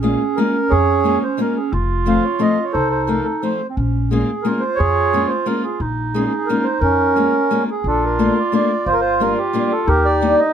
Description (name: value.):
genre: musette waltz.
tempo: 177 BPM.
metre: 3/4.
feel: straight.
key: Bb minor.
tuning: A4 = 441 Hz.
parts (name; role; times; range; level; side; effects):
mellow accordion; melody; 0.0-10.5 s; Db4 to F5; -18 LUFS; right 2 dB; plate reverb.
mellow clarinet; second line; 0.0-10.5 s; C4 to F4; -23 LUFS; right 6 dB; none.
fingerpicked steel-string acoustic guitar; accompaniment; 0.0-10.4 s; F3 to F4; -20 LUFS; left 4 dB; none.
upright bass; bass; 0.0-10.3 s; F1 to F2; -21 LUFS; left 1 dB; none.
room: moderate small room ambience, RT60 0.5 s.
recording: none.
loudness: -15 LUFS.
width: side -8 dB against mid.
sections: 0.0-7.9 A section; 7.9-10.5 B section.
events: none.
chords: 0.0 Bbm7; 1.7 F; 3.8 Bbm7; 7.9 Bbmaj7; 8.9 Gm7; 9.9 Ebmaj7.